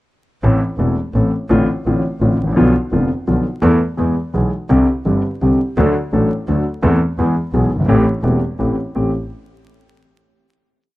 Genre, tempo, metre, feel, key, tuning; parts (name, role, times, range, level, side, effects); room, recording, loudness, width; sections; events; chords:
tango; 170 BPM; 3/4; rubato; A minor; A4 = 440 Hz
warm grand piano; accompaniment; 0.4-9.1 s; E1 to A4; -15 LUFS; left 1 dB
bright double bass; bass; 0.4-9.1 s; E1 to E2; -19 LUFS; equal
small room ambience; dry, close 1970s-style studio recording, vinyl crackle; -14 LUFS; side -18 dB against mid
0.4-8.9 A section; 8.9-10.0 final chord
0.4 Am; 1.5 Dm7/A; 2.6 Bdim; 3.6 Esus4; 4.0 E; 4.7 Csus2; 5.8 D; 6.8 Am/E; 7.2 E; 7.9 Am7